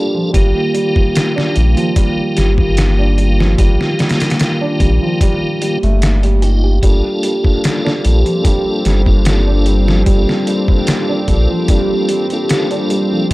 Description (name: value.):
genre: trip hop.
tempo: 74 BPM.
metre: 4/4.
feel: straight.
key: G minor.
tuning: A4 = 436 Hz.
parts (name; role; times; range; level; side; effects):
tonewheel organ; accompaniment; 0.0-13.3 s; Eb3 to A4; -18 LUFS; equal; chorus vibrato, tremolo, tape echo.
dark analog pad; sustained chords; 0.0-13.3 s; G3 to G4; -23 LUFS; equal; chorus, phaser.
felt-muted upright piano; arpeggios; 0.0-13.3 s; F3 to G4; -20 LUFS; right 1 dB; analog delay.
warm sub bass; bass; 0.3-13.3 s; G1 to Bb1; -13 LUFS; equal; none.
trip hop sampler-style drum kit; drums; 0.3-13.3 s; hi-hat, kick drum, snare drum; -16 LUFS; equal; none.
bowed-like drone; texture; 8.2-13.3 s; C4; -27 LUFS; equal; built-in reverb.
room: digital ambience.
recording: dry, gritty hardware recording.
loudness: -11 LUFS.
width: side -20 dB against mid.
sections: 0.0-13.3 A section.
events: none.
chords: 0.3 Ebadd9/G; 6.8 Gm7.